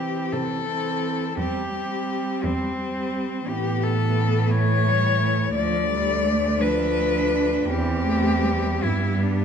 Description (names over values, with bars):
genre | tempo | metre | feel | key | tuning
classical, lyrical piece for cello ensemble | 57 BPM (dotted quarters) | 6/8 | uneven beats, rubato | C major | A4 = 440 Hz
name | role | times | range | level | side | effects
rich cello | melody | 0.0-9.4 s | C4 to D5 | -25 LUFS | left 6 dB | none
clear cello | second line | 0.0-9.4 s | G3 to D4 | -28 LUFS | right 7 dB | none
rich cello | accompaniment | 0.0-9.4 s | E3 to A3 | -28 LUFS | left 1 dB | none
clear cello | bass | 0.0-9.4 s | D2 to C3 | -25 LUFS | right 2 dB | none
room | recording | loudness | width
wet recital hall reverb, RT60 1.3 s | minimal, uncompressed stereo recording | -21 LUFS | side -7 dB against mid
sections
0.0-9.4 A section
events
none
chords
0.0 C; 1.4 C/E; 3.5 A7; 5.5 Dm; 6.6 Dm6; 7.7 C/E; 8.8 G